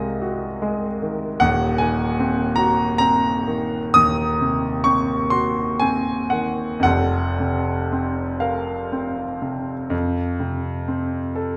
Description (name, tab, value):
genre	classical, romantic nocturne for solo piano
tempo	37-51 BPM (dotted quarters)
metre	12/8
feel	rubato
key	unclear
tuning	A4 = 440 Hz
part	warm grand piano	solo	0.0-11.6 s	Eb1 to Eb6	-21 LUFS	equal	none
room	wet recital hall reverb, RT60 1.4 s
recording	none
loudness	-21 LUFS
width	mono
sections	0.0-11.6 A section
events	none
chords	0.0 Ab7/C; 1.4 Cdim/Eb; 6.8 Fsus4; 9.9 F